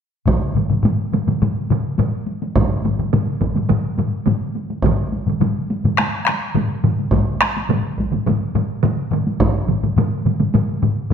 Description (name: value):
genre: japanese traditional, taiko drum ensemble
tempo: 105 BPM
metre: 4/4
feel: straight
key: none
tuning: none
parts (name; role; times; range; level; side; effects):
- solo taiko drums; percussion; 0.3-9.5 s; none; -21 LUFS; right 2 dB; none
- taiko ensemble; percussion; 0.3-11.0 s; none; -23 LUFS; equal; none
- taiko ensemble; percussion; 0.3-11.1 s; none; -20 LUFS; left 4 dB; none
- taiko ensemble; percussion; 0.3-11.1 s; none; -22 LUFS; right 6 dB; none
room: wet recital hall reverb, RT60 1.4 s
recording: none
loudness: -17 LUFS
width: side -7 dB against mid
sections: 0.3-11.1 A section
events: none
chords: none